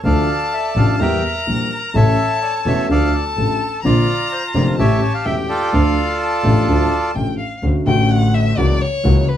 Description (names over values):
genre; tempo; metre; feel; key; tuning
tango; 127 BPM; 4/4; rubato; D harmonic minor; A4 = 440 Hz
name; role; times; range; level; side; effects
bandoneon; melody; 0.0-7.1 s; F4 to G5; -21 LUFS; right 2 dB; none
rich violin; second line; 0.0-9.4 s; B4 to Bb5; -23 LUFS; left 4 dB; none
warm grand piano; accompaniment; 0.0-9.2 s; E1 to A4; -18 LUFS; left 1 dB; none
rich double bass; bass; 0.0-9.2 s; E1 to E2; -18 LUFS; equal; none
room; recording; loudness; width
moderate studio reverb, RT60 0.5 s; band playing live in one room, vinyl crackle; -14 LUFS; side -10 dB against mid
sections
0.0-7.6 A section; 7.6-9.4 B section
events
violin solo 7.6-9.4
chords
0.0 Dm; 1.0 Edim; 1.9 A; 2.9 Dm; 3.8 Bbadd9; 4.8 A7; 5.7 Dm; 7.6 Dmaj7; 8.6 F#7/C#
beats
| 0.04 0.52 0.99 1.47 | 1.94 2.42 2.89 3.37 | 3.84 4.31 4.79 5.26 | 5.73 6.21 6.68 7.16 | 7.63 8.10 8.58 9.05